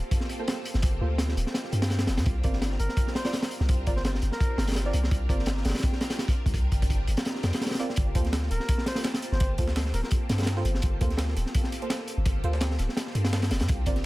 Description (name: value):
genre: drum and bass, jungle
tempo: 168 BPM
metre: 4/4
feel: swing 54% on 16ths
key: G minor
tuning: A4 = 438 Hz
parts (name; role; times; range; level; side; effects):
- soft string machine; sustained chords; 0.0-14.1 s; Bb3 to A5; -38 LUFS; equal; ensemble chorus
- long sustained 808-style bass; bass; 0.0-14.1 s; D1 to G2; -27 LUFS; equal; none
- crunchy breakbeat drum kit; drums; 0.1-14.0 s; hi-hat, kick drum, snare drum; -27 LUFS; equal; none
- deep mellow chord stab; stabs; 0.4-5.4, 7.8-14.0 s; Bb3 to D5; -37 LUFS; right 3 dB; chorus, dub echo
- trumpet with bucket mute; melody; 2.8-4.7, 8.5-10.1 s; Bb4 to C5; -39 LUFS; equal; vintage 12-bit sampler grit, dub echo
- breakbeat sampler-style drum kit; drums; 8.0-14.0 s; hi-hat, snare drum; -40 LUFS; right 2 dB; high-pass filter on hats, high-pass filter on snare, high-pass filter on room
room: studio ambience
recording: none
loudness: -24 LUFS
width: side -19 dB against mid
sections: 0.0-14.1 A section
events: none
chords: 0.0 Gm11; 2.3 C9sus4; 8.0 Gm11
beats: 0.12 0.47 | 0.83 1.19 1.54 1.90 | 2.26 2.62 2.97 3.33 | 3.69 4.04 4.40 4.76 | 5.12 5.47 5.83 6.19 | 6.54 6.90 7.26 7.62 | 7.97 8.33 8.69 9.04 | 9.40 9.76 10.12 10.47 | 10.83 11.19 11.54 11.90 | 12.26 12.62 12.97 13.33 | 13.69 14.04